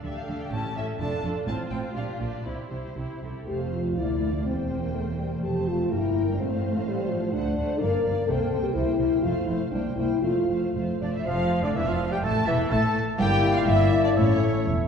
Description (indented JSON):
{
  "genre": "quick classical-period movement for symphony orchestra",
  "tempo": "115-128 BPM",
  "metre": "2/4",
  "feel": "rubato",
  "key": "F major, D minor from 11.3 s",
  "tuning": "A4 = 440 Hz",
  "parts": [
    { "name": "warm chamber violin section", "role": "melody", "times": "0.0-14.7 s", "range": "C#4 to A5", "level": "-36 LUFS", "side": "left 3 dB", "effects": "none" },
    { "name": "rich symphonic violin section", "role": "second line", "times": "0.0-14.7 s", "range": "E4 to A5", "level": "-33 LUFS", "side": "right 1 dB", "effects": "none" },
    { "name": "rich chamber viola section", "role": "accompaniment", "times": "0.0-14.6 s", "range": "D3 to A4", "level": "-34 LUFS", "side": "equal", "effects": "none" },
    { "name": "warm chamber cello section", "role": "bass", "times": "0.0-14.9 s", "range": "C2 to D3", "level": "-31 LUFS", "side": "right 2 dB", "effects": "none" },
    { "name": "warm studio double bass section", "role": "bass", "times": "0.0-14.9 s", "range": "E1 to D2", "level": "-30 LUFS", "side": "right 2 dB", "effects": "none" },
    { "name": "dark French horn section", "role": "sustained chords", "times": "3.5-14.9 s", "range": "D3 to Bb4", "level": "-27 LUFS", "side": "left 4 dB", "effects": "none" },
    { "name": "silver concert flute", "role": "second line", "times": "11.0-14.7 s", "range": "C#5 to A5", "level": "-34 LUFS", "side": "equal", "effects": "none" },
    { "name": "warm clarinet", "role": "second line", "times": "11.3-14.9 s", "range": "D4 to A4", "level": "-32 LUFS", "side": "left 6 dB", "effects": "none" },
    { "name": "warm oboe", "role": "second line", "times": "11.3-14.9 s", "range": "D5 to A5", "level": "-34 LUFS", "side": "right 2 dB", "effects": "none" },
    { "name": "warm bassoon", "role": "accompaniment", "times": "11.3-14.9 s", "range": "D3 to Bb3", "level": "-32 LUFS", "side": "right 3 dB", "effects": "none" }
  ],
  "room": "wet scoring stage reverb, RT60 1.7 s",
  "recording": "heard from further back in the room",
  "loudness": "-23 LUFS",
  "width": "side -7 dB against mid",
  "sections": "0.0-3.5 A section; 3.5-11.3 B section; 11.3-14.9 A section",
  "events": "none",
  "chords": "0.0 D5; 0.5 A; 1.0 Dm/F; 1.5 F; 2.0 Gm7; 2.5 C; 3.5 F; 4.0 Bb/D; 4.5 C7/E; 5.4 F; 5.9 Edim/G; 6.4 F/A; 7.3 D7; 7.8 Gm7; 8.3 C7; 9.2 F; 9.7 C7; 10.2 F; 11.3 Dm/F; 12.2 A5; 12.7 N.C.; 13.2 Em7b5/G; 14.2 A"
}